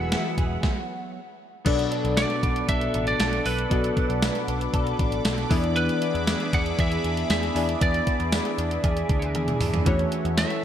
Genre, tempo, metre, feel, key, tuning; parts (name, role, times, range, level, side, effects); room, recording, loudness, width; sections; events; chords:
1980s-style pop; 117 BPM; 4/4; straight; A4 = 438 Hz
lightly driven lead guitar; melody; 0.0-10.6 s; B4 to F#5; -30 LUFS; right 2 dB; digital delay
glassy digital keys; accompaniment; 0.0-10.6 s; B2 to D5; -28 LUFS; left 3 dB; chorus
phased analog pad; sustained chords; 0.0-10.6 s; G#4 to E6; -34 LUFS; equal; phaser, chorus
direct-recorded clean electric guitar; riff; 0.0-10.6 s; E3 to A4; -32 LUFS; right 4 dB; tube saturation, ensemble chorus, digital delay
vintage muted picked electric bass; bass; 0.0-10.4 s; E1 to E2; -29 LUFS; equal
gated 80s digital drum machine; drums; 0.1-10.6 s; crash cymbal, hi-hat, kick drum, snare drum, tambourine, toms; -26 LUFS; equal; gated reverb, gated reverb snare
moderate lush hall reverb, RT60 2.8 s; bright 1980s-style digital production; -22 LUFS; side -10 dB against mid
0.0-1.7 A section; 1.7-10.6 B section
stop 0.6-1.7; drum fill 9.4-9.9
0.0 Eadd9; 1.7 Bm7; 5.5 E7; 9.9 A6